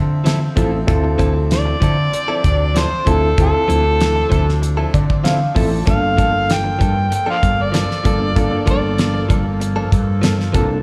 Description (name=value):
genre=straight-eighth soul blues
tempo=96 BPM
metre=4/4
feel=straight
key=D minor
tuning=A4 = 440 Hz
part: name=bright horn section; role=sustained chords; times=0.0-10.8 s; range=F3 to E5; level=-32 LUFS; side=equal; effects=none
part: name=woody fretless electric bass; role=bass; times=0.0-10.8 s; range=G1 to D3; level=-21 LUFS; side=equal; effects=subtle chorus
part: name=direct-recorded clean electric guitar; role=stabs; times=0.2-10.7 s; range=F3 to A4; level=-28 LUFS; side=equal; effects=none
part: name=damped 70s drum kit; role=drums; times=0.3-10.7 s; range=hi-hat, kick drum, snare drum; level=-20 LUFS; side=equal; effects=none
part: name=overdriven reed electric piano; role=accompaniment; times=0.6-10.8 s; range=Bb3 to A5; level=-24 LUFS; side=equal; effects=fast tremolo
part: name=overdriven harmonica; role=melody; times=1.5-9.3 s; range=A4 to G5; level=-22 LUFS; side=equal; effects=none
room=light reverb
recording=live gig heard through the venue's PA, club reverb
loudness=-16 LUFS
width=mono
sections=0.0-10.8 A section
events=harmonica solo 0.0-10.8; reed electric piano fill 4.6-5.9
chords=0.0 Dm9; 5.9 Gm9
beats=0.26 | 0.88 1.50 2.13 2.75 | 3.38 4.00 4.62 5.25 | 5.87 6.50 7.12 7.74 | 8.37 8.99 9.61 10.23